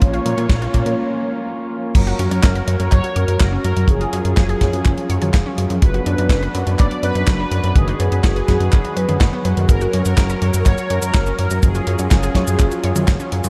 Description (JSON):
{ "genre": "italo disco", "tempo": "124 BPM", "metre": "4/4", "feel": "straight", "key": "F# major", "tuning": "A4 = 439 Hz", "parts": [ { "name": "mellow synth brass", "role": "melody", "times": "0.0-13.0 s", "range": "G#4 to D5", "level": "-28 LUFS", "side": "equal", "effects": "chorus, phaser, diffuse ambient delay" }, { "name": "warm analog pad", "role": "sustained chords", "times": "0.0-13.5 s", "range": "F#3 to C#5", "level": "-26 LUFS", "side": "equal", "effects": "chorus" }, { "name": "unison pluck", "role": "arpeggios", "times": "0.0-13.5 s", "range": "D#3 to D5", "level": "-30 LUFS", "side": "equal", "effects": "diffuse ambient delay" }, { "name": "fat analog bass", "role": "bass", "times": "0.0-13.5 s", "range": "F#1 to A#2", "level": "-22 LUFS", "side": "equal", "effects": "none" }, { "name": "clean 12-bit digital drum machine", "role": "drums", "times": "0.0-13.5 s", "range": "cabasa, crash cymbal, handclaps, hi-hat, snare drum, toms", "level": "-29 LUFS", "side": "equal", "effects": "none" }, { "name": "kick drum", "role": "drums", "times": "0.0-13.2 s", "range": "none", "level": "-17 LUFS", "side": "equal", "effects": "none" } ], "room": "moderate cathedral reverb, RT60 7.2 s", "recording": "dreamy mix soaked in reverb", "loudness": "-17 LUFS", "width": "mono", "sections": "0.0-1.9 A section; 1.9-13.5 B section", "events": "break 1.0-1.9", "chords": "0.0 A#m; 1.9 F#; 3.9 C#/F#; 5.8 Bm/F#; 7.8 G#m/F#; 9.7 F#; 11.6 C#/F#" }